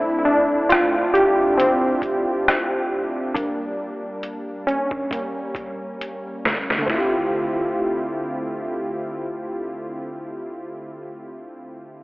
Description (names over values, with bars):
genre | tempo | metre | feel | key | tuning
lo-fi hip hop | 68 BPM | 4/4 | swing 56% on 16ths | D minor | A4 = 439 Hz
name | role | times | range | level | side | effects
warm analog keys | accompaniment | 0.0-12.0 s | D3 to G4 | -21 LUFS | equal | chorus, cassette tape
trip hop sampler-style drum kit | drums | 0.7-7.1 s | hi-hat, kick drum, rim click, snare drum | -24 LUFS | equal | none
room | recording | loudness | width
wet plate reverb, RT60 3.3 s | dreamy mix soaked in reverb, cassette tape, telephone sound | -20 LUFS | side -21 dB against mid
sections
0.0-6.9 A section; 6.9-10.4 B section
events
synth keys solo 0.0-6.9; drum fill 6.0-6.9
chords
0.0 Amadd11; 3.4 Gm; 5.1 Gdim; 6.9 Dm11